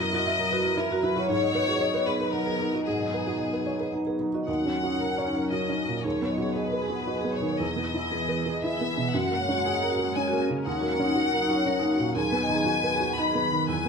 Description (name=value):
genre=neoclassical piano and strings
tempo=116 BPM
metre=3/4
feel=rubato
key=G# minor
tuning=A4 = 441 Hz
part: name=rich chamber violin section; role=melody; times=0.0-13.9 s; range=G#4 to B5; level=-28 LUFS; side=left 4 dB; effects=none
part: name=felt-muted upright piano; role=accompaniment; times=0.0-13.9 s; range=D#2 to E5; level=-29 LUFS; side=right 2 dB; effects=none
part: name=phased analog pad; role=sustained chords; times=0.0-13.9 s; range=D#3 to B4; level=-33 LUFS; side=left 1 dB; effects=phaser, chorus
part: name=vibraphone with medium hard mallets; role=arpeggios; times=0.0-13.9 s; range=D#4 to F#5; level=-31 LUFS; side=right 1 dB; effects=slapback echo
room=moderate large studio reverb, RT60 1.3 s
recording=none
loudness=-24 LUFS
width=side -5 dB against mid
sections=0.0-4.5 A section; 4.5-13.9 B section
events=none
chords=0.0 F#7; 1.3 G#m7; 4.5 D#m7; 6.0 G#m7/D#; 7.6 Emaj7; 9.1 F#add9; 10.7 D#m7; 12.2 G#m7/D#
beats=0.27 0.78 | 1.29 1.81 2.33 | 2.86 3.39 3.93 | 4.48 5.00 5.53 | 6.04 6.56 7.08 | 7.60 8.12 8.63 | 9.14 9.64 10.15 | 10.66 11.17 11.66 | 12.16 12.67 13.18 | 13.70